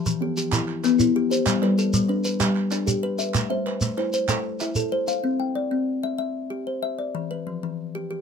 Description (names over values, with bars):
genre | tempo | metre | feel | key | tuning
southern african traditional, mbira-style interlocking cycle | 127 BPM (dotted quarters) | 12/8 | straight | C major | A4 = 440 Hz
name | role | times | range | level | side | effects
kalimba | arpeggios | 0.0-8.2 s | E3 to G5 | -24 LUFS | left 4 dB | none
kalimba | arpeggios | 0.0-5.4 s | E3 to E5 | -27 LUFS | right 2 dB | none
shekere | percussion | 0.1-5.2 s | none | -26 LUFS | right 3 dB | none
group handclap | percussion | 0.5-4.7 s | none | -30 LUFS | right 6 dB | none
room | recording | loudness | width
light reverb | minimal, uncompressed stereo recording | -22 LUFS | side -6 dB against mid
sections
0.0-5.2 A section; 5.2-8.2 A section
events
none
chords
0.0 Em; 1.5 G; 3.3 Am; 5.2 C; 7.1 Em